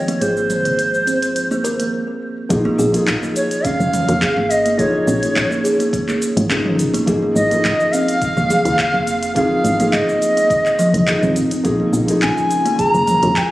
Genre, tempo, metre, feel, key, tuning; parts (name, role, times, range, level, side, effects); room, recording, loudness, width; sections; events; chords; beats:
organic downtempo; 105 BPM; 4/4; swing 53% on 16ths; Bb minor; A4 = 440 Hz
bright reedy bass bansuri; melody; 0.0-13.5 s; C5 to Bb5; -18 LUFS; equal; digital delay
felt-muted upright piano; accompaniment; 0.0-13.5 s; F3 to Ab4; -22 LUFS; left 1 dB; vintage 12-bit sampler grit, sidechain pumping, digital delay
warm analog pad; sustained chords; 0.0-1.9, 11.7-13.5 s; Db3 to F4; -26 LUFS; equal; chorus, sidechain pumping
kalimba; arpeggios; 0.0-13.5 s; F3 to Bb4; -21 LUFS; right 1 dB; digital delay
woody FM bass; bass; 0.0-13.3 s; Eb1 to F2; -21 LUFS; equal; sidechain pumping
organic electronic drum kit; drums; 0.1-13.5 s; cabasa, handclaps, hi-hat, toms; -24 LUFS; equal
electronic kick drum; drums; 2.5-13.5 s; -27 LUFS; equal
moderate lush hall reverb, RT60 1.6 s, digital ambience; recorded on a phone in the room, studio reverb; -14 LUFS; side -16 dB against mid
0.0-2.5 A section; 2.5-13.5 B section
break 1.9-2.5
0.0 Ab6; 2.5 Bbm7; 7.1 Ab6; 11.6 Bbm7
| 0.22 0.79 1.36 1.93 | 2.50 3.07 3.65 4.22 | 4.79 5.36 5.93 6.50 | 7.07 7.65 8.22 8.79 | 9.36 9.93 10.50 11.07 | 11.65 12.22 12.79 13.36